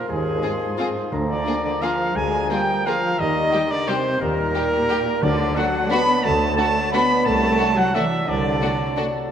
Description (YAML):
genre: classical, orchestral ballroom waltz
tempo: 176 BPM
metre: 3/4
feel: uneven beats, rubato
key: Eb major, D major from 5.2 s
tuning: A4 = 443 Hz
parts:
  - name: large flute ensemble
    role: second line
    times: 0.0-9.1 s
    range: Ab4 to B5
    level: -30 LUFS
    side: left 3 dB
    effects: none
  - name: warm clarinet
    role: second line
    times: 0.0-9.1 s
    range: Ab4 to B5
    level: -30 LUFS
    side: left 1 dB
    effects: none
  - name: warm oboe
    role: second line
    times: 0.0-9.3 s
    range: A5 to C6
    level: -31 LUFS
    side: right 1 dB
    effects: none
  - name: warm bassoon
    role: accompaniment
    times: 0.0-9.3 s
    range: F3 to G3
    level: -31 LUFS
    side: right 2 dB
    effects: none
  - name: mellow French horn section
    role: sustained chords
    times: 0.0-9.1 s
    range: Ab3 to B4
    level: -29 LUFS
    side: left 2 dB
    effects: none
  - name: concert harp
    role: arpeggios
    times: 0.0-9.3 s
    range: C3 to G5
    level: -30 LUFS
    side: left 5 dB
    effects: none
  - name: warm trumpet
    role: stabs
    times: 0.0-9.1 s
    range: Ab4 to B5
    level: -24 LUFS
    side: right 1 dB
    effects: none
  - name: warm studio cello section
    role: bass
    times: 0.0-9.1 s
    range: Ab2 to B3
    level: -27 LUFS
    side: right 2 dB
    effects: none
  - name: rich studio double bass section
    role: bass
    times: 0.1-8.6 s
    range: C2 to Eb2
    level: -28 LUFS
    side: right 2 dB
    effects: none
  - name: rich studio violin section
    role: melody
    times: 0.4-9.1 s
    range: F#4 to Ab4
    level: -32 LUFS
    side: left 4 dB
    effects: none
  - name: warm studio violin section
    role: second line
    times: 0.4-9.1 s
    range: D4 to G4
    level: -33 LUFS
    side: left 3 dB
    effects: none
  - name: warm studio viola section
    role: accompaniment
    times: 0.4-9.0 s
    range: G3 to C4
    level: -33 LUFS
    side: right 2 dB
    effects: none
  - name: timpani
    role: percussion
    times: 1.1-1.6, 5.2-5.7 s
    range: D3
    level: -29 LUFS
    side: left 1 dB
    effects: none
room: wet scoring stage reverb, RT60 1.5 s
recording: none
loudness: -18 LUFS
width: side -8 dB against mid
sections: 0.0-9.3 A section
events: none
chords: 0.0 Fm7/Eb; 1.1 Bb7/D; 3.2 Eb; 5.2 D; 7.3 D7/C